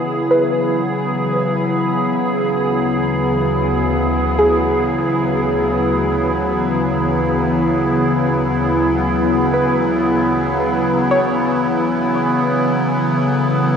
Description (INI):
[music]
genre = ambient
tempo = free time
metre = none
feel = none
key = unclear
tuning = A4 = 441 Hz
[part]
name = evolving wavetable pad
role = sustained chords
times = 0.0-13.8 s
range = D2 to A4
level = -16 LUFS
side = equal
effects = chorus, built-in reverb, shimmer reverb
[part]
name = soft round pluck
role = arpeggios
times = 0.0-13.8 s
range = G#4 to E5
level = -22 LUFS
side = equal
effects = analog chorus, diffuse ambient delay, shimmer reverb
[part]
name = organ-like drone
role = drone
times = 0.0-13.8 s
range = E3 to B3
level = -21 LUFS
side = left 1 dB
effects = ensemble chorus, built-in reverb
[sound]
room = wet concert hall reverb, RT60 2.0 s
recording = none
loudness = -15 LUFS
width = side -7 dB against mid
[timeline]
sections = 0.0-13.8 A section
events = none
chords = 0.0 C#m7; 2.4 Dmaj7; 10.6 B7sus2